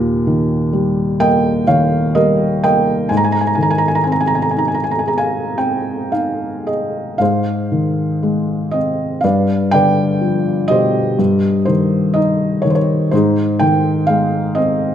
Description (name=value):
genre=classical, lyrical solo piano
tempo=54-64 BPM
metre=4/4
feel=rubato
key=Ab major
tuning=A4 = 440 Hz
part: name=felt-muted upright piano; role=solo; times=0.0-14.9 s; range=Eb2 to Bb5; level=-14 LUFS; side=equal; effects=none
room=moderate recital hall reverb, RT60 1.4 s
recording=minimal, uncompressed stereo recording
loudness=-13 LUFS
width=side -9 dB against mid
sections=0.0-7.2 A section; 7.2-14.9 B section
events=none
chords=0.0 Eb; 3.1 Ab; 9.2 G7; 11.2 Cm/G; 13.1 Ab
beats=0.26 1.20 2.15 | 3.11 4.08 5.07 6.13 | 7.20 8.23 9.24 10.22 | 11.19 12.16 13.12 14.09